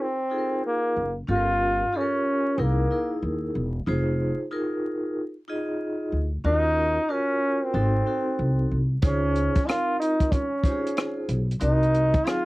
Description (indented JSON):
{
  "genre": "hip hop, jazz-hop",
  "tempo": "93 BPM",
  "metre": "4/4",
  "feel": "swing 66% on 16ths",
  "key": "Db major",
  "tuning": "A4 = 442 Hz",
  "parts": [
    { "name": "clear trombone", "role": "melody", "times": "0.0-12.5 s", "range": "Bb3 to F4", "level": "-24 LUFS", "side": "equal", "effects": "none" },
    { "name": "vibraphone with medium hard mallets", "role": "accompaniment", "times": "0.0-12.5 s", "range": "Gb3 to Eb5", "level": "-30 LUFS", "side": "equal", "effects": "cassette tape" },
    { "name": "upright bass", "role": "bass", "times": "1.0-12.1 s", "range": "E1 to D#2", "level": "-25 LUFS", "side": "equal", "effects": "none" },
    { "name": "compact cocktail drum kit", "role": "drums", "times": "9.0-12.5 s", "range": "hi-hat, kick drum, rim click", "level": "-24 LUFS", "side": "equal", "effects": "vintage 12-bit sampler grit, cassette tape" }
  ],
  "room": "light reverb",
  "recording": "home recording on cassette, vinyl crackle",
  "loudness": "-22 LUFS",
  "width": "side -20 dB against mid",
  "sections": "0.0-12.5 A section",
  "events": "none",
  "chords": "0.0 Db69 (rootless); 1.3 Gm7b5; 2.6 C7alt; 3.9 Fm7; 6.5 Ebm7; 7.7 Ab7b9; 9.0 Dbmaj7; 11.6 Cm7b5"
}